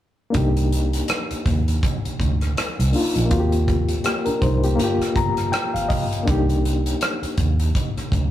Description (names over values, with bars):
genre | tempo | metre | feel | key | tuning
lush 1970s-style soul | 81 BPM | 4/4 | swing 58% on 16ths | C minor | A4 = 439 Hz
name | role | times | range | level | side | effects
barky reed electric piano | accompaniment | 0.3-8.3 s | D3 to Bb5 | -23 LUFS | left 2 dB | overdrive, fast tremolo
vintage muted fingered electric bass | bass | 0.3-8.3 s | G1 to Eb2 | -22 LUFS | right 1 dB | none
modern studio drum kit | drums | 0.3-8.3 s | hi-hat, kick drum, rim click | -24 LUFS | equal | none
room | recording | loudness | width
moderate studio reverb, RT60 0.6 s | rough rehearsal-room recording, tube saturation | -18 LUFS | side -12 dB against mid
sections
0.3-8.3 A section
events
reed electric piano fill 4.8-6.3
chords
0.3 Cm7; 3.3 Eb6; 4.8 Gm7; 6.3 Cm7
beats
| 0.34 1.09 1.83 2.57 | 3.31 4.05 4.79 5.53 | 6.27 7.01 7.75